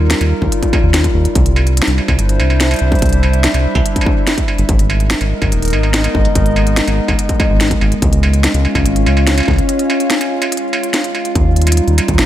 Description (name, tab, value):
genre	IDM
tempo	144 BPM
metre	4/4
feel	straight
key	Eb mixolydian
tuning	A4 = 438 Hz
part	warbly tape-like pad	sustained chords	0.0-12.3 s	G3 to F5	-18 LUFS	equal	chorus, built-in reverb
part	round analog bass	bass	0.0-12.3 s	Eb1 to Eb2	-14 LUFS	equal	none
part	industrial drum kit	drums	0.1-12.3 s	hi-hat, snare drum, struck metal	-18 LUFS	equal	digital delay
part	electronic kick drum	drums	0.4-12.2 s	none	-16 LUFS	equal	distortion
room	little or no reverb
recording	none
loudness	-11 LUFS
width	side -12 dB against mid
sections	0.0-11.4 A section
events	break 9.7-11.4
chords	0.0 Ebadd9; 1.4 Cadd9; 4.7 Abmadd9; 8.0 Db; 11.4 Ebadd9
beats	0.11 0.52 0.94 | 1.36 1.77 2.19 2.61 | 3.02 3.44 3.86 4.27 | 4.69 5.11 5.52 5.94 | 6.36 6.77 7.19 7.61 | 8.02 8.44 8.86 9.27 | 9.69 10.11 10.52 10.94 | 11.36 11.77 12.19